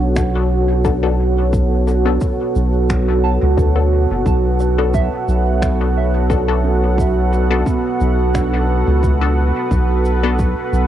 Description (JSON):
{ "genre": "ambient dub", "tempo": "88 BPM", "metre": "4/4", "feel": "swing 54% on 16ths", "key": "B minor", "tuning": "A4 = 440 Hz", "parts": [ { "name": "deep dark ambient pad", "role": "sustained chords", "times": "0.0-10.9 s", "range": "B3 to F#5", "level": "-19 LUFS", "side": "right 2 dB", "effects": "chorus, built-in reverb, cassette tape" }, { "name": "soft synth bell", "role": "arpeggios", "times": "0.0-10.9 s", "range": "B3 to A5", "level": "-28 LUFS", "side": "right 8 dB", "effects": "chorus, phaser, cassette tape, dub echo" }, { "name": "soft dub sub bass", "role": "bass", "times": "0.0-10.9 s", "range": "F#1 to D2", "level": "-16 LUFS", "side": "equal", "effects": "tube saturation" }, { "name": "electronic kick drum", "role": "drums", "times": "0.2-10.5 s", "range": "none", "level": "-21 LUFS", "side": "equal", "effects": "overdrive, cassette tape" }, { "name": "shaker and finger snaps", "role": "drums", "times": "0.2-10.9 s", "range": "none", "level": "-32 LUFS", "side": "equal", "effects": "cassette tape, dub echo" }, { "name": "filtered dub chord stab", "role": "stabs", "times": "0.8-10.4 s", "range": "B3 to A4", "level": "-24 LUFS", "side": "left 8 dB", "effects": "phaser, cassette tape, dub echo" } ], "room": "small room ambience", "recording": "home recording on cassette", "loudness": "-14 LUFS", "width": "side -11 dB against mid", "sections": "0.0-10.9 A section", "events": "none", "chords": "0.0 Bm7", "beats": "0.17 0.85 | 1.53 2.21 2.89 3.57 | 4.26 4.94 5.62 6.30 | 6.98 7.67 8.35 9.03 | 9.71 10.39" }